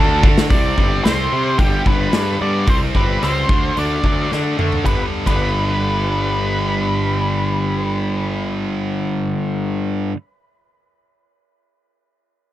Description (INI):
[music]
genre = quiet-loud alternative rock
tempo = 110 BPM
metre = 4/4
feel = straight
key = G major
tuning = A4 = 442 Hz
[part]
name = octave-fuzz lead guitar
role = melody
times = 0.0-10.0 s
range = G4 to D5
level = -23 LUFS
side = equal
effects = distortion, tape echo
[part]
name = high-gain distorted guitar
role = riff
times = 0.0-10.2 s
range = G2 to D4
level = -22 LUFS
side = right 1 dB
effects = distortion
[part]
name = fuzz picked electric bass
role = bass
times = 0.0-10.1 s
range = G1 to D3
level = -22 LUFS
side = equal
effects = overdrive
[part]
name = big rock drum kit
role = drums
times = 0.2-5.4 s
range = hi-hat, kick drum, ride cymbal, rim click, snare drum, toms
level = -17 LUFS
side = equal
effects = none
[part]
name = twangy electric guitar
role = arpeggios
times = 0.5-10.2 s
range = G2 to D4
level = -30 LUFS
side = left 11 dB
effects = none
[sound]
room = little or no reverb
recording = none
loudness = -16 LUFS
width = side -14 dB against mid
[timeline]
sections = 0.5-4.9 A section; 4.9-9.2 B section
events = drum fill 0.0-0.5, 4.3-4.9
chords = 0.0 D5; 0.5 C5; 1.6 G; 2.7 C5; 3.5 D; 4.9 G